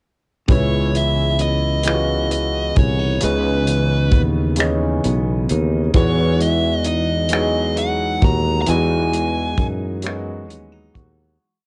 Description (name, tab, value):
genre	slow six-eight R&B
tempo	44 BPM (dotted quarters)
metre	6/8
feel	straight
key	C# minor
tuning	A4 = 440 Hz
part	dark smooth lead guitar	melody	0.5-9.7 s	B4 to A#5	-25 LUFS	equal	overdrive, cassette tape, plate reverb
part	clean electric guitar	second line	0.5-11.7 s	C#3 to F#4	-27 LUFS	equal	phaser, cassette tape
part	clear baby grand piano	accompaniment	0.5-11.4 s	C#3 to G#4	-27 LUFS	equal	cassette tape, plate reverb
part	sustaining fretless electric bass	bass	0.5-11.4 s	B1 to F#2	-23 LUFS	equal	none
part	warm soul drum kit	drums	0.5-11.2 s	finger snaps, hi-hat, kick drum	-21 LUFS	equal	vintage 12-bit sampler grit, cassette tape
room	light reverb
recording	home recording on cassette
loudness	-18 LUFS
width	mono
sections	0.5-11.4 verse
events	fade-out 8.7-11.4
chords	0.5 C#m9; 5.9 Emaj9